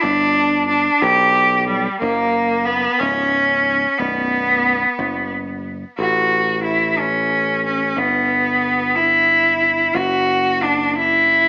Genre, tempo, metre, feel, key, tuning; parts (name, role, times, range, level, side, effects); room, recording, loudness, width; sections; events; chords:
post-rock; 61 BPM (dotted quarters); 6/8; straight; A4 = 440 Hz
bright cello; melody; 0.0-11.5 s; G3 to G4; -14 LUFS; equal; plate reverb, tape echo
modern bright picked electric bass; bass; 0.0-11.5 s; B0 to B1; -24 LUFS; equal
wet studio reverb, RT60 0.6 s; AM radio sound; -14 LUFS; side -26 dB against mid
0.0-6.0 A section; 6.0-11.5 B section
0.0 G; 2.0 F#; 4.0 B5; 6.0 A; 8.0 Em/G; 10.0 Dadd9/F#